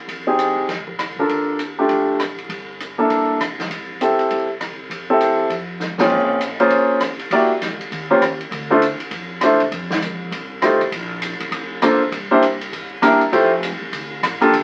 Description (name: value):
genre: jazz, small-group swing and bop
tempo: 199 BPM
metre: 4/4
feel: swing 62% on 8ths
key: F major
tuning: A4 = 441 Hz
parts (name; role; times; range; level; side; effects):
- upright bass; bass; 0.1-14.6 s; E1 to C3; -38 LUFS; equal; none
- open jazz drum kit; drums; 0.1-14.6 s; crash cymbal, hi-hat, kick drum, ride cymbal, rim click, snare drum; -28 LUFS; equal; none
- clear grand piano; accompaniment; 0.3-14.5 s; Bb2 to D5; -18 LUFS; equal; none
room: wet studio reverb, RT60 0.6 s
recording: very old 78 rpm record, vinyl crackle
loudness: -19 LUFS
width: mono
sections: 0.0-6.1 A section; 6.1-14.6 B section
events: drum fill 5.8-6.1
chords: 0.1 Fm7; 0.7 Bb; 1.3 Ebmaj9#11; 2.5 Gmadd9; 3.1 C13; 3.7 Fmaj9; 5.5 F5; 6.1 Bbm7; 7.3 Em7b5; 7.9 Eb13; 8.5 Dm7; 9.7 F7; 10.9 Bbmaj7; 12.1 C7; 13.3 Fmaj7; 13.9 D5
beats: | 0.08 0.38 0.69 0.99 | 1.29 1.59 1.89 2.19 | 2.50 2.80 3.10 3.40 | 3.70 4.00 4.30 4.61 | 4.91 5.21 5.51 5.81 | 6.11 6.41 6.71 7.01 | 7.31 7.61 7.91 8.21 | 8.51 8.81 9.11 9.41 | 9.72 10.02 10.32 10.62 | 10.92 11.22 11.52 11.82 | 12.12 12.42 12.72 13.03 | 13.33 13.63 13.93 14.23 | 14.53